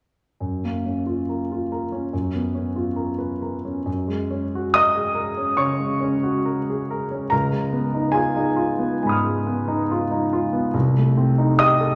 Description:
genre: classical, impressionist solo piano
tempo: 70 BPM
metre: 4/4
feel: rubato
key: Gb major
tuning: A4 = 438 Hz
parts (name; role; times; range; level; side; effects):
- warm concert grand piano; solo; 0.4-12.0 s; C2 to F6; -22 LUFS; equal; none
room: wet recital hall reverb, RT60 1.6 s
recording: none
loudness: -22 LUFS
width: mono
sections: 0.4-3.9 A section; 3.9-12.0 B section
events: none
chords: 0.4 Gbmaj7; 2.1 Db6/Gb; 3.9 Gbadd9; 7.3 Db9; 10.7 Cm6

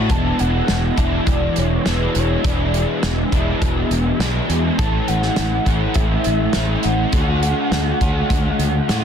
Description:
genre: rock, shoegaze and dream pop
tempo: 102 BPM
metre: 4/4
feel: straight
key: E mixolydian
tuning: A4 = 440 Hz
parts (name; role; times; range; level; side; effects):
- crunchy overdriven guitar; riff; 0.0-9.0 s; E2 to F#4; -20 LUFS; equal; analog chorus
- growling fingered electric bass; bass; 0.0-9.0 s; E1 to A2; -20 LUFS; equal; overdrive
- warm velvety synth lead; melody; 0.1-9.0 s; B4 to A5; -26 LUFS; equal; chorus, tape echo
- loose indie drum kit; drums; 0.1-9.0 s; hi-hat, kick drum, snare drum; -22 LUFS; equal; none
room: studio reverb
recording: dense, heavily limited modern master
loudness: -16 LUFS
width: side -8 dB against mid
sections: 0.1-9.0 A section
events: none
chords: 0.1 E5; 4.8 A; 7.1 D

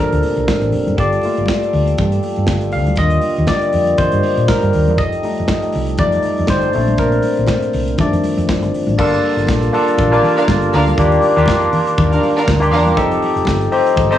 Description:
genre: disco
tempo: 120 BPM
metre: 4/4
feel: swing 56% on 16ths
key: G minor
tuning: A4 = 440 Hz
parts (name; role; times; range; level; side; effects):
- barky tine electric piano; accompaniment; 0.0-14.2 s; D3 to F5; -16 LUFS; left 2 dB; wide subtle chorus, cassette tape
- percussive tonewheel organ; sustained chords; 0.0-14.2 s; Bb2 to A5; -23 LUFS; right 2 dB; slow rotary speaker, cassette tape
- hollow-body short-scale fingered electric bass; bass; 0.1-14.2 s; F1 to Bb2; -18 LUFS; equal; none
- modern studio drum kit; drums; 0.1-14.2 s; crash cymbal, hi-hat, kick drum, snare drum; -22 LUFS; equal; cassette tape
- congas; percussion; 0.2-14.1 s; none; -25 LUFS; left 4 dB; none
- dark studio string section; second line; 10.1-14.2 s; C4 to A5; -19 LUFS; right 2 dB; cassette tape
room: light reverb, small room reverb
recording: home recording on cassette, studio ambience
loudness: -13 LUFS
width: side -11 dB against mid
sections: 0.0-9.0 A section; 9.0-14.2 B section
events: tine electric piano solo 0.0-9.0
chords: 0.0 Bbmaj9; 1.0 Gm9; 3.0 Ebmaj9; 5.0 F9; 6.7 Bbmaj9; 8.0 F13; 9.0 Gm9; 11.0 Ebmaj9; 13.0 F9

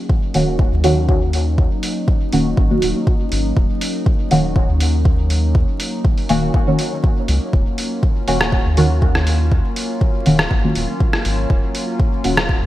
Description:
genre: dub techno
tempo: 121 BPM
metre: 4/4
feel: straight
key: Eb minor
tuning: A4 = 436 Hz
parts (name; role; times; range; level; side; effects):
- warbly tape-like pad; sustained chords; 0.0-12.7 s; Gb3 to F4; -25 LUFS; left 1 dB; chorus, built-in reverb, sidechain pumping
- electronic kick drum; drums; 0.1-12.6 s; none; -16 LUFS; equal; overdrive, small room reverb
- deep mellow chord stab; stabs; 0.3-12.3 s; Eb3 to Gb4; -19 LUFS; equal; chorus, phaser, cassette tape, sidechain pumping, dub echo
- round analog bass; bass; 0.3-12.7 s; Eb1 to Eb2; -19 LUFS; equal; sidechain pumping
- lo-fi sampler-style drum kit; drums; 0.3-12.5 s; hi-hat, rim click; -23 LUFS; equal; overdrive, small room reverb, gated reverb
room: light reverb, digital ambience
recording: bright 1980s-style digital production, vinyl crackle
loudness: -15 LUFS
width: side -15 dB against mid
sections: 0.0-12.7 A section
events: none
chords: 0.0 Ebm7

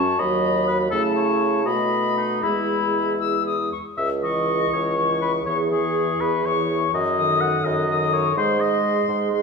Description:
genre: quick classical-period movement for wind quintet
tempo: 81 BPM (dotted quarters)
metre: 6/8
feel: rubato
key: E major, C# minor from 4.0 s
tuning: A4 = 438 Hz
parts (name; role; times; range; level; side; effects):
- bright silver concert flute; melody; 0.0-9.4 s; A5 to E6; -26 LUFS; left 8 dB; none
- warm oboe; second line; 0.0-9.1 s; D#4 to F#5; -24 LUFS; left 2 dB; none
- mellow French horn; accompaniment; 0.0-9.4 s; D#3 to A3; -28 LUFS; left 1 dB; none
- mellow clarinet; accompaniment; 0.0-9.4 s; E4 to A4; -29 LUFS; right 6 dB; none
- mellow bassoon; bass; 0.0-9.4 s; C#2 to C#3; -24 LUFS; right 2 dB; none
room: moderate scoring stage reverb, RT60 1.7 s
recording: small room ambience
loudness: -19 LUFS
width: side -4 dB against mid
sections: 0.0-4.0 A section; 4.0-9.4 B section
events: none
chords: 0.2 B/D#; 0.9 A/C#; 1.7 B7; 2.4 E; 4.0 C#m; 5.5 C#m/E; 6.9 D#dim/F#; 8.4 G#

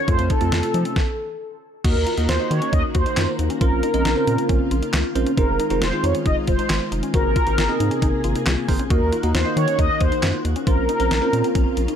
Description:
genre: synth-pop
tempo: 136 BPM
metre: 4/4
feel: straight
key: unclear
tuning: A4 = 439 Hz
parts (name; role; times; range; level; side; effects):
- mellow synth brass; melody; 0.0-12.0 s; A4 to Eb5; -24 LUFS; equal; chorus
- ensemble organ-string; sustained chords; 0.0-12.0 s; C3 to Ab4; -28 LUFS; equal; ensemble chorus
- soft round pluck; arpeggios; 0.0-12.0 s; C4 to Gb4; -29 LUFS; left 6 dB; chorus, tape echo
- bell-like tine electric piano; accompaniment; 0.1-11.8 s; A3 to Eb5; -26 LUFS; right 6 dB; phaser
- round analog bass; bass; 0.1-11.9 s; F1 to F3; -23 LUFS; equal; none
- clean 12-bit digital drum machine; drums; 0.1-12.0 s; crash cymbal, handclaps, hi-hat, kick drum, snare drum; -22 LUFS; equal; none
room: light reverb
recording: none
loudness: -18 LUFS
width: side -8 dB against mid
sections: 0.0-1.8 A section; 1.8-12.0 B section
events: stop 1.0-1.8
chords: 0.1 F; 1.8 Ebm; 3.6 Bbmadd9; 5.4 Fm7; 7.1 Abadd9; 8.9 Ebm; 10.7 Bbmadd9

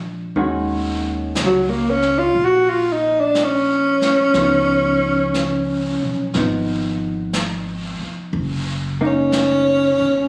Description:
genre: jazz ballad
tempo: 60 BPM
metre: 4/4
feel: swing 68% on 8ths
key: Eb minor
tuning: A4 = 440 Hz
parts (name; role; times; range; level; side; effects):
- vintage hollow-body jazz guitar; accompaniment; 0.0-10.3 s; Eb3 to Gb4; -26 LUFS; equal; none
- upright bass; bass; 0.0-10.3 s; Gb1 to Eb2; -30 LUFS; equal; none
- jazz brush drum kit; drums; 0.4-10.3 s; brushed snare drum, hi-hat, snare drum; -31 LUFS; equal; none
- breathy tenor saxophone; melody; 1.5-10.3 s; Gb3 to Gb4; -18 LUFS; equal; none
room: light reverb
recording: recorded on a phone in the room, studio reverb, compression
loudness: -19 LUFS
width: mono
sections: 0.4-10.3 A section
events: tenor saxophone solo 0.4-10.3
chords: 0.4 Ebm7; 4.3 Db9; 8.3 Gb6

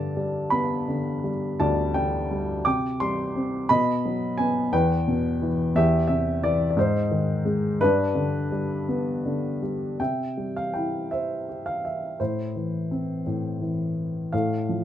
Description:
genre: classical, lyrical solo piano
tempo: 53-59 BPM (dotted quarters)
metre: 6/8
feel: rubato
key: C major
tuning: A4 = 439 Hz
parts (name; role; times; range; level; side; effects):
- warm upright piano; solo; 0.0-14.8 s; D2 to D6; -23 LUFS; equal; none
room: light reverb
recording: close, detailed microphones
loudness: -23 LUFS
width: side -10 dB against mid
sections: 0.0-10.0 A section; 10.0-14.8 B section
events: none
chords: 0.0 G; 2.7 C5; 3.7 B; 4.7 Em; 5.7 C/E; 6.8 Ab; 7.8 G; 10.0 C; 12.2 Am; 14.3 F/A

